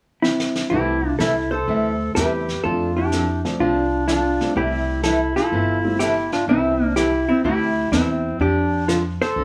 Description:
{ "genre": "country, western swing", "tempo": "125 BPM", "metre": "4/4", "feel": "swing 68% on 8ths", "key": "C major", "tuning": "A4 = 437 Hz", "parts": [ { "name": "hollow-body jazz guitar", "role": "melody", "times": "0.2-9.4 s", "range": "C4 to C5", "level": "-24 LUFS", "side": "equal", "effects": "none" }, { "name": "vintage brush drum kit", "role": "drums", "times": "0.2-9.4 s", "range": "brushed snare drum, hi-hat, snare drum", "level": "-33 LUFS", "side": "equal", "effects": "none" }, { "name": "breathy clarinet", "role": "second line", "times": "0.7-9.4 s", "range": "C4 to A4", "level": "-26 LUFS", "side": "equal", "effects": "none" }, { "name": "picked old ladder-braced acoustic guitar", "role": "accompaniment", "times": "0.7-9.4 s", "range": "C3 to A4", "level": "-29 LUFS", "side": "equal", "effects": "none" }, { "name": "warm upright piano", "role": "accompaniment", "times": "0.7-6.0 s", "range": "F3 to E4", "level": "-30 LUFS", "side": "equal", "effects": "none" }, { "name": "upright bass", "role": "bass", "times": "0.7-9.4 s", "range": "G1 to F2", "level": "-28 LUFS", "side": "equal", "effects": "none" } ], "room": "moderate club reverb, RT60 0.8 s", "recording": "none", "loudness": "-20 LUFS", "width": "mono", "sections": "0.7-9.4 A section", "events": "drum fill 0.2-0.7", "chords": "0.0 N.C.; 0.7 C6; 2.6 F6; 4.6 C6; 8.4 F6" }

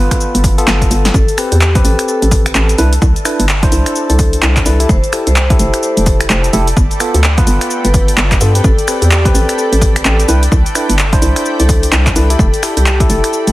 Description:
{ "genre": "UK garage, two-step garage", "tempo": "128 BPM", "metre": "4/4", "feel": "swing 60% on 16ths", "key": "unclear", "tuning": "A4 = 440 Hz", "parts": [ { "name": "barky tine electric piano", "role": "stabs", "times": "0.0-13.5 s", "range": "B3 to C5", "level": "-19 LUFS", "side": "moving between left 4 dB and right 4 dB", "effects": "auto-pan, dub echo" }, { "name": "hollow knocking FM bass", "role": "bass", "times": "0.0-13.5 s", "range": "F1 to G2", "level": "-12 LUFS", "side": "equal", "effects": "none" }, { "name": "granular cloud pad", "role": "texture", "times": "0.0-13.5 s", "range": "A4 to B5", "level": "-24 LUFS", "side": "equal", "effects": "built-in reverb, sidechain pumping" }, { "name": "electronic kick drum", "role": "drums", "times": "0.1-13.1 s", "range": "none", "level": "-13 LUFS", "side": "equal", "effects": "overdrive" }, { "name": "punchy analog drum machine", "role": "drums", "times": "0.1-13.5 s", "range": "finger snaps, handclaps, hi-hat, shaker, snare drum", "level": "-17 LUFS", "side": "equal", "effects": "overdrive" }, { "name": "vibraphone with medium hard mallets", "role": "melody", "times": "1.1-13.5 s", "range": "G4 to C5", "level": "-21 LUFS", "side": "left 2 dB", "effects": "dub echo" } ], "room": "little or no reverb", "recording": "dense, heavily limited modern master, vinyl crackle", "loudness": "-9 LUFS", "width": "side -17 dB against mid", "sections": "0.0-13.5 A section", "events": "drum fill 0.7-1.1", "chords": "0.0 G7; 1.1 Am9; 2.8 Cmaj7; 4.9 Fmaj9; 6.8 G7; 8.6 Am9; 10.3 Cmaj7; 12.4 Fmaj9" }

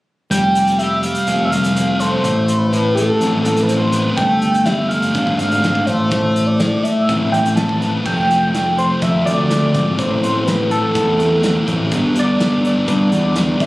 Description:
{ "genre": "indie rock", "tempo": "124 BPM", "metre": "4/4", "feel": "straight", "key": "unclear", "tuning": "A4 = 440 Hz", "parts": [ { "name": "overdriven synth lead", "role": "melody", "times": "0.3-13.7 s", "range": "A4 to A5", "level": "-19 LUFS", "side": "equal", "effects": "chorus, slapback echo" }, { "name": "thick fuzz guitar", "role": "riff", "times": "0.3-13.7 s", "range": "E3 to B4", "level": "-18 LUFS", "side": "left 1 dB", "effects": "distortion" }, { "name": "growling picked electric bass", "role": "bass", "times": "0.3-13.7 s", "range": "F1 to G2", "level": "-20 LUFS", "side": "equal", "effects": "overdrive" }, { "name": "loose indie drum kit", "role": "drums", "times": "0.3-13.7 s", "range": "crash cymbal, hi-hat, kick drum, snare drum", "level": "-25 LUFS", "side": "equal", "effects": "none" } ], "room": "moderate studio reverb, RT60 0.5 s", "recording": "recorded on a phone in the room, club reverb, compression", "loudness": "-14 LUFS", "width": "side -18 dB against mid", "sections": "0.3-8.1 A section; 8.1-13.7 B section", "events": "none", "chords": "0.3 Fadd9; 2.2 Amadd9; 4.2 Gsus2; 5.9 Am; 8.1 Fadd9; 10.0 Am; 11.9 G" }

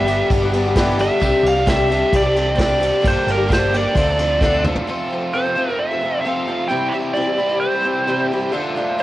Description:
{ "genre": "folk rock and heartland rock", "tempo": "132 BPM", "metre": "4/4", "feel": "straight", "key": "unclear", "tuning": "A4 = 440 Hz", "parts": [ { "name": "nasal lead guitar with a parked wah", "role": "melody", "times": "0.0-9.0 s", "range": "Bb4 to G5", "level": "-20 LUFS", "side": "right 2 dB", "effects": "overdrive, cassette tape, tape echo" }, { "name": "picked twelve-string acoustic guitar", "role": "accompaniment", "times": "0.0-9.0 s", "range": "G2 to A4", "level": "-20 LUFS", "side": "left 2 dB", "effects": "cassette tape" }, { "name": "biting overdriven guitar", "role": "riff", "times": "0.0-9.0 s", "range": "F2 to G4", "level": "-24 LUFS", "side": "right 2 dB", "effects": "cassette tape" }, { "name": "hollow-body short-scale fingered electric bass", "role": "bass", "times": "0.0-4.7 s", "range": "G1 to D2", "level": "-23 LUFS", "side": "equal", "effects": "transformer saturation" }, { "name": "soft brush drum kit", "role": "drums", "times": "0.1-4.9 s", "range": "crash cymbal, kick drum, ride cymbal, snare drum, toms", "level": "-22 LUFS", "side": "equal", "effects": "cassette tape" } ], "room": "light reverb", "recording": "home recording on cassette", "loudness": "-16 LUFS", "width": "side -15 dB against mid", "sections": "0.0-4.9 A section; 4.9-9.0 B section", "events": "drum fill 4.4-4.9", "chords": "0.0 G6; 1.2 Csus2; 3.0 Gm7; 4.0 Dm7; 4.9 F; 6.7 C; 8.5 Dm" }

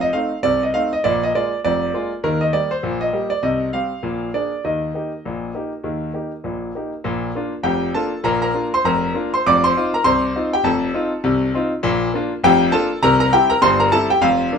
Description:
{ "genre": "ragtime piano", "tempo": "100 BPM", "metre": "2/4", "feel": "swing 60% on 16ths", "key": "Eb major, Bb major from 7.1 s", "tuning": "A4 = 440 Hz", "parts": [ { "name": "clear concert grand piano", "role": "solo", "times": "0.0-14.6 s", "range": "F1 to D6", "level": "-17 LUFS", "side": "equal", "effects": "none" } ], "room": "moderate studio reverb, RT60 0.8 s", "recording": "minimal, uncompressed stereo recording", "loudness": "-17 LUFS", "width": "side -6 dB against mid", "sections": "0.0-7.1 A section; 7.1-14.6 B section", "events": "none", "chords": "0.0 F7; 1.0 Bb7; 2.2 Eb; 3.4 Cm; 4.0 Bb7; 4.6 Eb; 7.1 Bb; 9.5 F7; 11.8 Bb; 13.0 C7" }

